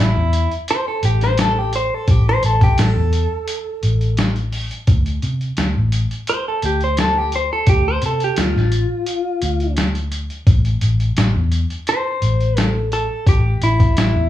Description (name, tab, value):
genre	straight-eighth soul blues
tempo	86 BPM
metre	4/4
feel	straight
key	A minor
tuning	A4 = 440 Hz
part	overdriven harmonica	second line	0.0-0.5 s	E4	-24 LUFS	right 1 dB	none
part	vintage muted fingered electric bass	bass	0.0-14.3 s	A1 to C3	-18 LUFS	equal	none
part	lo-fi sampler-style drum kit	drums	0.3-14.1 s	hi-hat, kick drum, snare drum	-18 LUFS	equal	overdrive
part	direct-recorded clean electric guitar	melody	0.7-14.3 s	E4 to C5	-20 LUFS	equal	phaser
room	wet large studio reverb, RT60 0.9 s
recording	band playing live in one room, small room ambience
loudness	-15 LUFS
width	side -12 dB against mid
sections	0.0-14.3 A section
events	none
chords	0.0 A5; 4.9 Dm; 10.5 Am